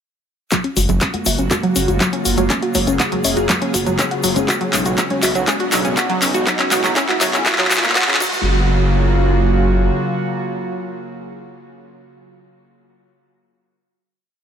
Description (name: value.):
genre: progressive house.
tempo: 121 BPM.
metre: 4/4.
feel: straight.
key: F# major.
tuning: A4 = 440 Hz.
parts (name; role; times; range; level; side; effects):
evolving wavetable pad; sustained chords; 0.9-11.7 s; C#3 to G#4; -22 LUFS; right 1 dB; chorus, built-in reverb, sidechain pumping.
analog pluck; arpeggios; 0.5-8.7 s; C#3 to F#4; -21 LUFS; equal; chorus, phaser, sidechain pumping, tape echo.
electronic kick drum; drums; 0.5-8.3 s; none; -23 LUFS; equal; high-pass filter on kick, high-pass filter on room.
house drum kit; drums; 0.5-8.3 s; crash cymbal, handclaps, hi-hat; -19 LUFS; left 1 dB; high-pass filter on snare, high-pass filter on hats, high-pass filter on cymbals, high-pass filter on room.
egg shaker; percussion; 0.5-8.4 s; none; -27 LUFS; left 3 dB; none.
riser; sound effects; 3.1-8.5 s; none; -28 LUFS; right 2 dB; none.
dark detuned saw bass; bass; 0.8-9.9 s; F#1 to B1; -20 LUFS; equal; sidechain pumping.
congas, bongos and cowbell; percussion; 0.8-8.4 s; none; -28 LUFS; left 3 dB; sidechain pumping on perc.
room: light reverb.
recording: high-pass filter.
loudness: -15 LUFS.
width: side -8 dB against mid.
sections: 0.5-8.5 build; 8.5-12.4 final hit.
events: build-up 0.5-8.5; drum fill 0.5-8.5; filter sweep on synth arpeggio sound 0.5-8.5; filter sweep 0.5-8.5; riser 3.1-8.5.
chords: 0.5 F#maj7; 4.5 Badd9; 8.2 F#maj7.